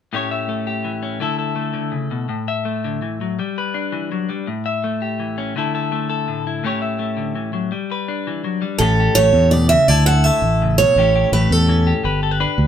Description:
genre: highlife guitar band.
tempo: 110 BPM (dotted quarters).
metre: 12/8.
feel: straight.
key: A mixolydian.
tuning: A4 = 440 Hz.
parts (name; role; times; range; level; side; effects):
clean electric guitar; accompaniment; 0.1-12.7 s; A2 to E5; -21 LUFS; left 4 dB; none.
picked steel-string acoustic guitar; melody; 8.8-11.9 s; A4 to F#5; -16 LUFS; right 3 dB; none.
fingered electric bass; bass; 8.8-12.7 s; G1 to E2; -16 LUFS; equal; none.
room: moderate studio reverb, RT60 0.5 s.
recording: band playing live in one room.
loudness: -16 LUFS.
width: side -9 dB against mid.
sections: 0.1-8.8 A section; 8.8-12.7 B section.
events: none.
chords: 0.1 A7; 1.2 Dsus2; 2.3 A5; 3.4 G; 4.5 A7; 5.6 Dsus2; 6.6 A7; 7.7 G; 8.8 A7; 9.9 Dsus2; 11.0 A7; 12.0 G.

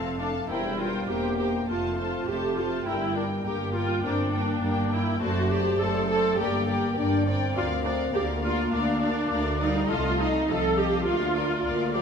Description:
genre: quick classical-period movement for symphony orchestra.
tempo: 102 BPM.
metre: 4/4.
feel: straight.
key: Bb major from 7.6 s.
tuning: A4 = 442 Hz.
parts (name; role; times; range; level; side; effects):
muted studio violin section; melody; 0.0-12.0 s; F5 to A5; -35 LUFS; left 3 dB; none.
muted studio violin section; second line; 0.0-12.0 s; A4 to F5; -33 LUFS; left 3 dB; none.
muted studio viola section; accompaniment; 0.0-12.0 s; C4 to A4; -28 LUFS; right 2 dB; none.
mellow French horn section; sustained chords; 0.0-12.0 s; F3 to D4; -31 LUFS; left 3 dB; none.
muted studio cello section; bass; 0.0-12.0 s; C2 to G2; -32 LUFS; right 2 dB; none.
muted studio double bass section; bass; 0.0-12.0 s; E1 to D2; -34 LUFS; right 2 dB; none.
room: wet recital hall reverb, RT60 1.3 s.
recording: recorded in a church or concert hall.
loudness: -24 LUFS.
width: side -6 dB against mid.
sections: 0.0-12.0 A section.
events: none.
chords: 0.5 C7/E; 1.7 F; 2.9 Gm; 5.2 D7/F#; 6.4 Gm; 7.6 Bb/D; 9.9 F7/C; 11.1 Bb/D.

